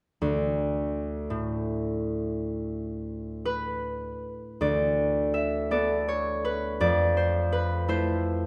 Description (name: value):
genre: classical, solo harp piece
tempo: 55 BPM (dotted quarters)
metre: 6/8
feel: rubato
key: unclear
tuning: A4 = 440 Hz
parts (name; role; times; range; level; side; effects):
- concert harp; solo; 0.2-8.5 s; D2 to E5; -28 LUFS; equal; none
room: wet recital hall reverb, RT60 1.7 s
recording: none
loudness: -28 LUFS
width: mono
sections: 0.2-4.6 A section; 4.6-8.5 B section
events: none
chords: 0.2 D5; 6.8 Fmaj7